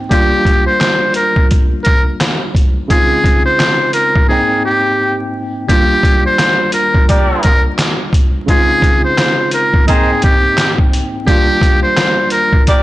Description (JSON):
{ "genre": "hip hop, boom-bap hip-hop", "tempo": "86 BPM", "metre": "4/4", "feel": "swing 58% on 16ths", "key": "Eb major", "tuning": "A4 = 441 Hz", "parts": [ { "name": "tine electric piano", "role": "accompaniment", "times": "0.0-12.8 s", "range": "Eb2 to G5", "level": "-19 LUFS", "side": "equal", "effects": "overdrive, fast stereo tremolo, cassette tape, high-pass filter, low-pass filter" }, { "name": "trumpet with metal mute", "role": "melody", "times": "0.1-12.6 s", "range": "G4 to C5", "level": "-14 LUFS", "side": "equal", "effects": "high-pass filter, low-pass filter, slapback echo" }, { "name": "trip hop sampler-style drum kit", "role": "drums", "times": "0.1-12.8 s", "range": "handclaps, hi-hat, kick drum, snare drum", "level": "-13 LUFS", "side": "equal", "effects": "none" }, { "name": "mellow trumpet section", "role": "stabs", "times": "7.1-12.8 s", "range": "G4 to Eb5", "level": "-18 LUFS", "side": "right 1 dB", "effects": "high-pass filter, low-pass filter, slapback echo" } ], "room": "light reverb", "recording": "blown-out, overdriven recording, vinyl crackle, overdrive, nothing above 10.8 kHz", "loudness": "-10 LUFS", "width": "side -16 dB against mid", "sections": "0.0-5.7 A section; 5.7-12.8 B section", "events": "break 4.3-5.7", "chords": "0.1 Ebmaj9; 2.9 Dbmaj9; 4.3 Abmaj9; 5.7 Ebmaj9; 8.5 Dbmaj9; 9.9 Abmaj9; 11.3 Ebmaj9", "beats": "| 0.11 0.81 1.51 2.20 | 2.90 3.60 4.30 4.99 | 5.69 6.39 7.09 7.79 | 8.48 9.18 9.88 10.58 | 11.27 11.97 12.67" }